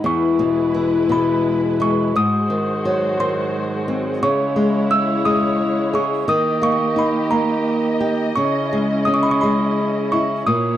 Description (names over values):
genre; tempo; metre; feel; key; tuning
children's music, lullaby; 57 BPM (dotted quarters); 6/8; rubato; unclear; A4 = 442 Hz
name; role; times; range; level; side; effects
music box; melody; 0.0-10.8 s; A#5 to E6; -22 LUFS; right 2 dB; slapback echo
flamenco guitar; accompaniment; 0.0-10.8 s; E2 to G#4; -18 LUFS; left 2 dB; none
muted studio string section; sustained chords; 0.0-10.8 s; G#3 to D#5; -24 LUFS; right 1 dB; none
room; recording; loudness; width
light reverb; dry, close 1970s-style studio recording; -16 LUFS; side -12 dB against mid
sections
0.0-10.8 A section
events
none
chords
0.0 E; 2.2 G#7; 4.2 C#m; 6.3 D#; 8.4 C#madd9